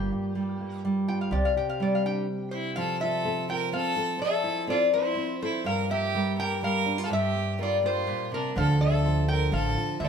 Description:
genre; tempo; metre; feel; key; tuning
acoustic folk duo or small band; 124 BPM; 3/4; straight; G dorian; A4 = 438 Hz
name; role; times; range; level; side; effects
lap resonator guitar; melody; 0.0-10.1 s; G4 to G5; -29 LUFS; left 2 dB; none
nylon-string guitar; accompaniment; 0.0-10.1 s; G2 to Bb4; -29 LUFS; right 1 dB; none
upright bass; bass; 0.0-1.5, 8.6-10.1 s; A1 to D2; -26 LUFS; right 1 dB; none
rich fiddle; second line; 2.5-10.1 s; D4 to Bb4; -30 LUFS; right 1 dB; none
room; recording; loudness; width
moderate stone room reverb, RT60 1.0 s; band playing live in one room; -24 LUFS; side -7 dB against mid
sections
0.0-2.8 A section; 2.8-10.1 B section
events
resonator guitar played with a steel bar solo 0.0-2.8; stop 2.3-2.8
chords
0.0 Gm7; 1.3 Csus2; 2.8 Fmaj7; 5.7 Gm7; 8.5 Dmadd9

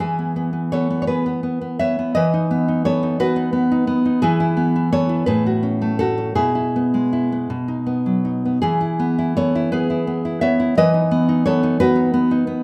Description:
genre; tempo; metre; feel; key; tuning
romantic piece for solo classical guitar; 52-60 BPM (dotted quarters); 6/8; rubato; E major; A4 = 444 Hz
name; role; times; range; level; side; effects
nylon-string guitar; solo; 0.0-12.6 s; A2 to E5; -19 LUFS; equal; none
room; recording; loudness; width
moderate recital hall reverb, RT60 1.5 s; none; -19 LUFS; mono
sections
0.0-12.6 A section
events
none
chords
0.0 E; 2.1 B/E; 4.2 E; 5.3 F#m/A; 6.4 E/B; 7.5 B; 8.6 E; 10.8 B/E

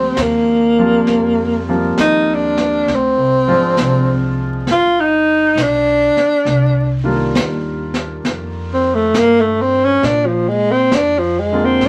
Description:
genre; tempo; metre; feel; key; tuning
jazz ballad; 67 BPM; 4/4; swing 66% on 8ths; Bb major; A4 = 439 Hz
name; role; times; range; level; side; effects
breathy tenor saxophone; melody; 0.0-11.9 s; F3 to F4; -16 LUFS; equal; none
warm concert grand piano; accompaniment; 0.0-11.9 s; D3 to F4; -23 LUFS; equal; none
upright bass; bass; 0.0-11.9 s; G1 to Bb2; -24 LUFS; equal; none
vintage brush drum kit; drums; 0.2-11.9 s; brushed snare drum, hi-hat, snare drum; -24 LUFS; equal; none
room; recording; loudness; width
moderate studio ambience, RT60 0.5 s; vinyl crackle; -15 LUFS; mono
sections
0.0-11.9 A section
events
tenor saxophone solo 0.0-11.9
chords
0.0 Bb69; 2.9 Dm7b5; 4.7 G; 6.4 Cm11; 10.0 Bb9

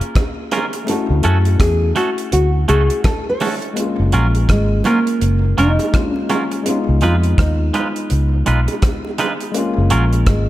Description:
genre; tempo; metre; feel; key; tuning
lovers rock reggae; 83 BPM; 4/4; swing 60% on 16ths; F# major; A4 = 438 Hz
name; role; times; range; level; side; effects
barky tine electric piano; accompaniment; 0.0-10.5 s; G#3 to E#5; -23 LUFS; left 4 dB; none
damped 70s drum kit; drums; 0.0-10.5 s; hi-hat, kick drum, rim click; -19 LUFS; equal; none
bongos; percussion; 0.2-9.7 s; none; -28 LUFS; right 4 dB; tape echo
twangy electric guitar; stabs; 0.5-10.0 s; F#3 to B4; -23 LUFS; right 3 dB; spring reverb
nylon-string guitar; melody; 0.9-10.5 s; G#3 to C#5; -21 LUFS; equal; tape echo
vintage muted fingered electric bass; bass; 1.1-10.5 s; E#1 to F#2; -15 LUFS; equal; none
room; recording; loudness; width
studio reverb; none; -14 LUFS; side -15 dB against mid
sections
0.0-3.8 A section; 3.8-10.5 B section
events
nylon-string guitar solo 0.0-3.8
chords
0.0 F#maj7 (rootless); 0.9 Dmaj7; 3.8 F#maj7; 6.7 C#9; 9.5 F#maj7

